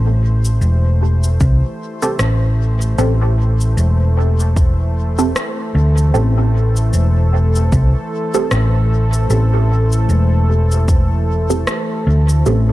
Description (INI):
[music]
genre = ambient dub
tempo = 76 BPM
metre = 4/4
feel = swing 57% on 16ths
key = A minor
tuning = A4 = 440 Hz
[part]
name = warm analog pad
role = sustained chords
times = 0.0-12.7 s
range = E3 to C5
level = -23 LUFS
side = left 1 dB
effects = chorus
[part]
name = hollow-body short-scale fingered electric bass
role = bass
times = 0.0-12.7 s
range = E1 to D2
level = -13 LUFS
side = equal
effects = none
[part]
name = electronic cabasa and rim click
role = drums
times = 0.4-12.6 s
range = none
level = -25 LUFS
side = equal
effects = dub echo
[part]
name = electronic kick drum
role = drums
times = 1.4-11.1 s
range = none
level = -16 LUFS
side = equal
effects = overdrive
[part]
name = filtered dub chord stab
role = stabs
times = 2.0-12.6 s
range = C4 to A4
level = -22 LUFS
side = right 2 dB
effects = phaser, dub echo
[sound]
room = little or no reverb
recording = none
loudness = -13 LUFS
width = side -16 dB against mid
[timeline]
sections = 0.0-12.7 A section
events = fade-in on analog synth pad 0.0-12.7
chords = 0.0 Am7